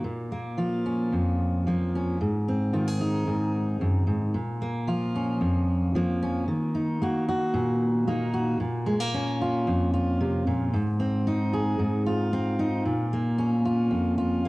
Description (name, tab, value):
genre	folk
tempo	113 BPM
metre	4/4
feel	straight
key	Bb minor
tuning	A4 = 443 Hz
part	fingerpicked steel-string acoustic guitar	solo	0.0-14.5 s	F2 to Ab4	-24 LUFS	equal	cassette tape, tape echo
room	light reverb, small room ambience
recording	home recording on cassette, lossy compression artefacts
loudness	-24 LUFS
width	side -21 dB against mid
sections	0.1-8.6 A section; 8.6-14.5 B section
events	build-up 0.1-8.6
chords	0.1 Bbm; 2.2 Ab; 4.3 Bbm; 6.5 Ebm; 8.6 Bbm; 10.7 Ab; 12.9 Bbm